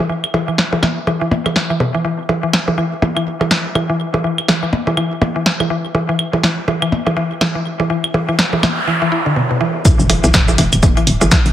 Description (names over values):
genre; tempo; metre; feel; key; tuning
minimal techno; 123 BPM; 4/4; swing 58% on 16ths; unclear; A4 = 443 Hz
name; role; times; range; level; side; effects
mallet-like synth pluck; riff; 0.0-11.4 s; B2 to E4; -18 LUFS; equal; chorus, sidechain pumping, dub echo
claves and percussion blips; percussion; 0.2-11.3 s; none; -20 LUFS; equal; digital delay
punchy analog drum machine; drums; 0.6-11.4 s; hi-hat, shaker, snare drum; -17 LUFS; equal; low-pass filter on snare, low-pass filter on perc, low-pass filter on hats, low-pass filter on room
noise sweep and impact; sound effects; 8.3-11.5 s; none; -21 LUFS; right 1 dB; none
dusty soul sampler-style drum kit; drums; 9.9-11.5 s; hi-hat, snare drum, tambourine; -29 LUFS; left 1 dB; none
electronic kick drum; drums; 9.9-11.4 s; none; -13 LUFS; equal; none
hollow knocking FM bass; bass; 10.0-11.5 s; D1 to B1; -15 LUFS; equal; sidechain pumping
room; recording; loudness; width
moderate plate reverb, RT60 1.3 s; heavily compressed radio sound; -13 LUFS; side -11 dB against mid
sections
0.0-9.8 A section; 9.8-11.5 B section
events
noise sweep 8.3-9.8; drop 9.8-11.5; impact 9.8-11.5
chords
0.0 E5; 9.8 N.C.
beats
| 0.09 0.58 1.07 1.56 | 2.05 2.53 3.02 3.51 | 4.00 4.49 4.97 5.46 | 5.95 6.44 6.92 7.41 | 7.90 8.39 8.88 9.36 | 9.85 10.34 10.83 11.31